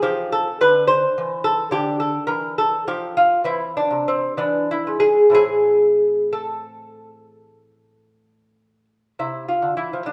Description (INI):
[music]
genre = classical, baroque-style dance for lute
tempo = 60-72 BPM (dotted quarters)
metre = 12/8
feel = rubato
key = A minor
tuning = A4 = 442 Hz
[part]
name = lute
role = solo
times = 0.0-10.1 s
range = A2 to C5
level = -19 LUFS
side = equal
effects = none
[sound]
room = moderate concert hall reverb, RT60 2.0 s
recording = none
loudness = -19 LUFS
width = mono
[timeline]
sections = 0.0-9.2 A section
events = none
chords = 0.0 F5; 1.7 Dmadd9; 3.5 Cadd9; 4.4 E; 5.3 Am; 9.2 Am/C (rootless)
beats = 0.04 0.88 | 1.74 2.59 3.47 4.39 | 5.35 6.34 7.32 8.27 | 9.20 10.06